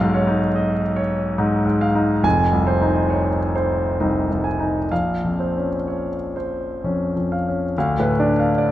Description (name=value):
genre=classical, impressionist solo piano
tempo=62-75 BPM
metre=3/4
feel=rubato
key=unclear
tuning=A4 = 440 Hz
part: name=clear grand piano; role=solo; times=0.0-8.7 s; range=F1 to Ab5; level=-18 LUFS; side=equal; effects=none
room=moderate recital hall reverb, RT60 1.4 s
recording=none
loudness=-18 LUFS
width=side -13 dB against mid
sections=0.0-7.8 A section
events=none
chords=0.0 Dbadd9/Cb; 2.2 Fm7; 4.9 Bbmadd9; 7.8 Dm6